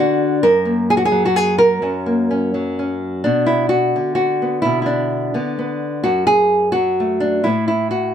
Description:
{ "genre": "folk, solo fingerstyle acoustic guitar", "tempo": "128 BPM", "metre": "3/4", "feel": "rubato", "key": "B dorian", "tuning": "A4 = 440 Hz", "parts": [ { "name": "nylon-string guitar", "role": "solo", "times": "0.0-8.1 s", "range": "F#2 to A#4", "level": "-15 LUFS", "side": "equal", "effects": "none" } ], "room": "moderate studio reverb, RT60 0.7 s", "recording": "none", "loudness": "-15 LUFS", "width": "side -9 dB against mid", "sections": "0.0-3.3 A section; 3.3-8.1 B section", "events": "none", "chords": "0.4 F#; 3.3 Bm; 6.0 F#m; 7.5 A5" }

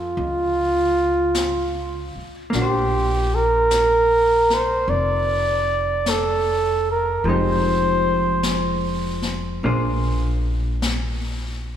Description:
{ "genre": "jazz ballad", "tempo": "51 BPM", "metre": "4/4", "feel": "swing 68% on 8ths", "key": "unclear", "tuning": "A4 = 440 Hz", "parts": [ { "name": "trumpet with bucket mute", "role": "melody", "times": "0.0-9.3 s", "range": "F4 to D5", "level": "-19 LUFS", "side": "right 1 dB", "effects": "none" }, { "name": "vintage hollow-body jazz guitar", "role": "accompaniment", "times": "0.0-11.8 s", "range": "F3 to C5", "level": "-25 LUFS", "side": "left 1 dB", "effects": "none" }, { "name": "upright bass", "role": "bass", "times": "0.0-11.8 s", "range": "F1 to F2", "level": "-26 LUFS", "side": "equal", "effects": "none" }, { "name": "jazz brush drum kit", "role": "drums", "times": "0.2-11.8 s", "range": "brushed snare drum, hi-hat, snare drum", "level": "-30 LUFS", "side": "left 3 dB", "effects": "none" } ], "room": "wet church reverb, RT60 3.1 s", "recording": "recorded in a church or concert hall", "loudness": "-18 LUFS", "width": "side -10 dB against mid", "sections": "0.0-11.8 A section", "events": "none", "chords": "0.0 Faug7; 2.5 Bbadd9; 7.3 Fm9; 9.6 Bb9" }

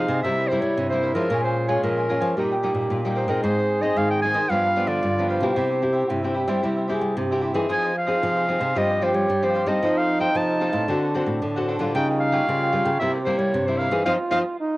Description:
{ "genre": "samba", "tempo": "113 BPM", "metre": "4/4", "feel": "straight", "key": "unclear", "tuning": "A4 = 440 Hz", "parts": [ { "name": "bright clarinet", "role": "melody", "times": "0.0-14.4 s", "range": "Bb4 to A5", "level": "-24 LUFS", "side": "equal", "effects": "cassette tape" }, { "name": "warm trombone", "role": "second line", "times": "0.0-14.8 s", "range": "D4 to Ab4", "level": "-27 LUFS", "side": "right 2 dB", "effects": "cassette tape" }, { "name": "cavaquinho", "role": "accompaniment", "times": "0.0-14.4 s", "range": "D4 to Ab5", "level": "-31 LUFS", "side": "right 1 dB", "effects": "cassette tape" }, { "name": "nylon-string guitar", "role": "accompaniment", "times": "0.0-14.4 s", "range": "G2 to A4", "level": "-26 LUFS", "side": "left 2 dB", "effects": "cassette tape" }, { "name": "nylon-string guitar", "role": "bass", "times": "0.0-14.4 s", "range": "G2 to G3", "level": "-27 LUFS", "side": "equal", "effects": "none" } ], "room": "light reverb, small room ambience", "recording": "home recording on cassette", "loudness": "-20 LUFS", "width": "side -19 dB against mid", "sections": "0.0-14.8 A section", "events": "band accent 14.1-14.8", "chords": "0.2 C7; 1.3 Bbm7; 2.4 Eb/Bb; 3.4 Ab; 4.5 G7; 5.6 C; 7.7 Fm7; 8.8 Csus4/G; 9.8 F7; 10.9 D7; 12.0 Gm7b5/Db; 13.0 C7; 14.1 F5" }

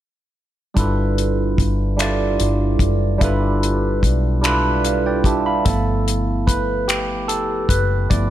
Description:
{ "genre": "slow six-eight R&B", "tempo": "49 BPM (dotted quarters)", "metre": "6/8", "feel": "straight", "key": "unclear", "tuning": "A4 = 440 Hz", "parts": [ { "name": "barky tine electric piano", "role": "accompaniment", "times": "0.7-8.3 s", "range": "F3 to B5", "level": "-20 LUFS", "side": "right 2 dB", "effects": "overdrive, phaser" }, { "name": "vintage muted fingered electric bass", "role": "bass", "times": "0.8-8.3 s", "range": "Gb1 to B1", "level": "-21 LUFS", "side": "equal", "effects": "none" }, { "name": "damped 70s drum kit", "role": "drums", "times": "0.8-8.3 s", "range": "finger snaps, hi-hat, kick drum", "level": "-20 LUFS", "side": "left 1 dB", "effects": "none" } ], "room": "light reverb", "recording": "none", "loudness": "-16 LUFS", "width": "side -12 dB against mid", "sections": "0.8-5.7 A section; 5.7-8.3 B section", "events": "tine electric piano solo 5.7-8.3", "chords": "0.8 G13" }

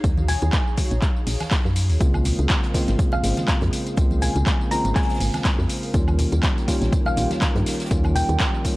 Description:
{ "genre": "deep house", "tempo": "122 BPM", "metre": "4/4", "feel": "swing 55% on 16ths", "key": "unclear", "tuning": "A4 = 439 Hz", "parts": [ { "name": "hollow soft pad", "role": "sustained chords", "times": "0.0-8.8 s", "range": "Eb4 to G5", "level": "-35 LUFS", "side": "left 1 dB", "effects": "ensemble chorus, vintage 12-bit sampler grit, sidechain pumping" }, { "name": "woody FM bass", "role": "bass", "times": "0.0-8.4 s", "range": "Ab1 to G2", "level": "-21 LUFS", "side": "equal", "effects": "sidechain pumping" }, { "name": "deep house drum kit", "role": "drums", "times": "0.0-8.8 s", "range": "handclaps, hi-hat, tambourine, woodblock", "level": "-28 LUFS", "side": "equal", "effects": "overdrive, studio reverb" }, { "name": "electronic kick drum", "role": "drums", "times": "0.0-8.8 s", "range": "none", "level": "-22 LUFS", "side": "equal", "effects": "overdrive, studio reverb" }, { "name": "natural country drum kit", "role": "drums", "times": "0.0-8.8 s", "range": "hi-hat, shaker, snare drum", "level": "-40 LUFS", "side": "right 1 dB", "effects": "high-pass filter on hats, studio reverb, high-pass filter on snare, high-pass filter on perc, high-pass filter on room" }, { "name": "congas", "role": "percussion", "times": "0.2-8.8 s", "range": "none", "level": "-33 LUFS", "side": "right 1 dB", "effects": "none" }, { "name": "thumb-piano-like synth pluck", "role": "melody", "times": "0.3-8.6 s", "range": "F5 to Bb5", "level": "-29 LUFS", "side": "equal", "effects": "lush chorus, analog delay" }, { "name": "tine electric piano", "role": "stabs", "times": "2.0-8.8 s", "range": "Db3 to F4", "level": "-26 LUFS", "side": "equal", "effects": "sidechain pumping" } ], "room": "studio reverb", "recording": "dry, gritty hardware recording, transformer saturation", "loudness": "-18 LUFS", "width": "side -20 dB against mid", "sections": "0.0-8.8 A section", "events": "none", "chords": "0.0 Ebm11; 2.0 Bbm9; 5.9 Eb7" }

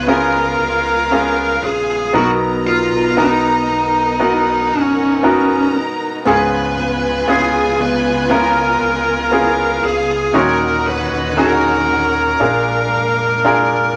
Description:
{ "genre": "pop ballad", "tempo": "58 BPM", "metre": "4/4", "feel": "straight", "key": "unclear", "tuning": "A4 = 440 Hz", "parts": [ { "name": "bluesy overdriven lead guitar", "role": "melody", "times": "0.0-13.9 s", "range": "D#4 to Cb5", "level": "-19 LUFS", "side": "equal", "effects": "distortion" }, { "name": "clear studio violin section", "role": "second line", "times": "0.0-14.0 s", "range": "D5 to A#5", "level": "-31 LUFS", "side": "equal", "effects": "none" }, { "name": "clear baby grand piano", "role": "accompaniment", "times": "0.0-14.0 s", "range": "Ab2 to Db5", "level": "-20 LUFS", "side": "equal", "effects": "none" }, { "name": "warm studio string section", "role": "sustained chords", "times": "0.0-14.0 s", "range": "Bb2 to A#4", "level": "-29 LUFS", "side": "equal", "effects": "none" }, { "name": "picked steel-string acoustic guitar", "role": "arpeggios", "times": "0.0-14.0 s", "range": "Bb2 to A#4", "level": "-27 LUFS", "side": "equal", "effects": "none" }, { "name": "sub bass with octave", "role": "bass", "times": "0.0-13.9 s", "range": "F1 to Eb2", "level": "-34 LUFS", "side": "equal", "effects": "none" } ], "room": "wet club reverb, RT60 0.6 s", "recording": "none", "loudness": "-15 LUFS", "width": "mono", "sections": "0.0-14.0 A section", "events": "none", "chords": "0.0 Db7; 2.1 Bmaj7; 6.3 Db7; 10.3 Ebm7; 12.4 Bb7" }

